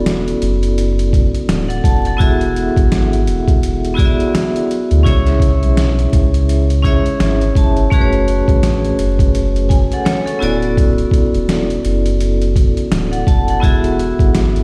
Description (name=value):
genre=hip hop, boom-bap hip-hop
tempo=84 BPM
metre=4/4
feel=swing 58% on 16ths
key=unclear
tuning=A4 = 438 Hz
part: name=vibraphone with hard mallets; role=accompaniment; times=0.0-14.6 s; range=A3 to A5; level=-20 LUFS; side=equal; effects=cassette tape, high-pass filter, low-pass filter
part: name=soft dub sub bass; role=bass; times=0.0-14.6 s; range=D1 to D2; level=-19 LUFS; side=equal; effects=none
part: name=boom bap sampler-style drum kit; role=drums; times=0.1-14.6 s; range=hi-hat, kick drum, snare drum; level=-18 LUFS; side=equal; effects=none
room=light reverb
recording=played on a big sound system in a bare room, stone room reverb, vinyl crackle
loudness=-14 LUFS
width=mono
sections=0.0-14.6 A section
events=none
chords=0.0 D6; 2.2 Eadd9; 5.1 C#m; 7.9 F#madd9; 10.4 D6; 13.6 Eadd9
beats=0.06 0.77 1.49 | 2.20 2.92 3.63 4.34 | 5.06 5.77 6.49 7.20 | 7.92 8.63 9.34 10.06 | 10.77 11.49 12.20 12.91 | 13.63 14.34